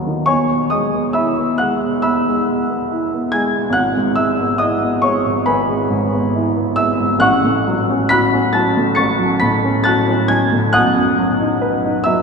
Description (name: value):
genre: classical, romantic nocturne for solo piano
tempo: 69 BPM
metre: 4/4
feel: rubato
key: E major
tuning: A4 = 435 Hz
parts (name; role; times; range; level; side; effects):
- warm grand piano; solo; 0.0-12.2 s; G#1 to C#7; -14 LUFS; equal; none
room: wet cathedral reverb, RT60 4.8 s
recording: recorded in a church or concert hall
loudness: -14 LUFS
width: side -5 dB against mid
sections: 0.0-12.2 A section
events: none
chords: 0.3 E; 3.7 E/G#; 7.2 F#m/A; 10.7 B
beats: | 0.28 1.16 2.04 2.90 | 3.75 4.60 5.47 6.34 | 7.21 8.09 8.96 9.85 | 10.72 11.61